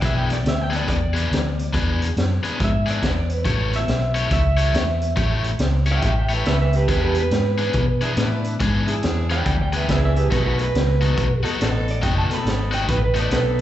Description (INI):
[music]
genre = electric blues shuffle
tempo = 140 BPM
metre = 4/4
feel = swing 63% on 8ths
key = E mixolydian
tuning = A4 = 440 Hz
[part]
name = electric guitar through a small old amp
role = second line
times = 0.0-13.6 s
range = F#4 to B5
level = -26 LUFS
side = right 3 dB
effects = spring reverb, slapback echo
[part]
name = cranked stack guitar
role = riff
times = 0.0-13.4 s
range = B2 to C#5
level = -26 LUFS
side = left 5 dB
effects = overdrive
[part]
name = vintage muted fingered electric bass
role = bass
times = 0.0-13.6 s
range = F#1 to B2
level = -21 LUFS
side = equal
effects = none
[part]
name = raw garage drum kit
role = drums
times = 0.0-13.6 s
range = hi-hat, kick drum, snare drum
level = -25 LUFS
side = equal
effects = none
[part]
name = warm horn section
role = stabs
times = 8.0-13.6 s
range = B3 to B4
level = -30 LUFS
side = right 1 dB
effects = slapback echo, tape echo
[sound]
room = light reverb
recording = live gig heard through the venue's PA, club reverb, nothing above 8.0 kHz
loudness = -18 LUFS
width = side -12 dB against mid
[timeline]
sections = 0.0-13.6 A section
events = clean electric guitar solo 0.0-13.6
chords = 0.0 E7; 3.5 A7; 6.9 E7; 10.3 B7